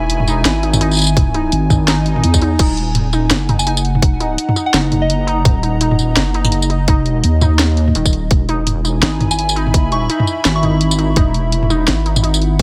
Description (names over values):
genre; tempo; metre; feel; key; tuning
half-time drum and bass; 168 BPM; 4/4; swing 58% on 16ths, half-time; unclear; A4 = 441 Hz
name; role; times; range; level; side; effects
dark analog pad; sustained chords; 0.0-12.6 s; Eb4 to B5; -26 LUFS; equal; chorus, sidechain pumping
deep soft wobble bass; bass; 0.0-12.6 s; Eb1 to E2; -18 LUFS; equal; chorus
drum and bass drum kit; drums; 0.1-12.6 s; crash cymbal, hi-hat, snare drum, tambourine, toms; -20 LUFS; equal; none
warbly dusty pluck; arpeggios; 0.3-12.3 s; Eb3 to Eb4; -25 LUFS; equal; chorus, cassette tape, dub echo
electronic kick drum; drums; 1.2-12.6 s; none; -16 LUFS; equal; none
swell; sound effects; 2.1-2.6 s; none; -30 LUFS; equal; none
soft synth bell; melody; 3.6-5.5, 9.3-10.8 s; Eb5 to Db6; -27 LUFS; equal; chorus, dub echo
room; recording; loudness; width
light reverb, digital ambience; none; -15 LUFS; mono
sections
0.0-12.6 A section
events
swell 2.1-2.6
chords
0.0 E; 2.6 Ebm; 8.3 E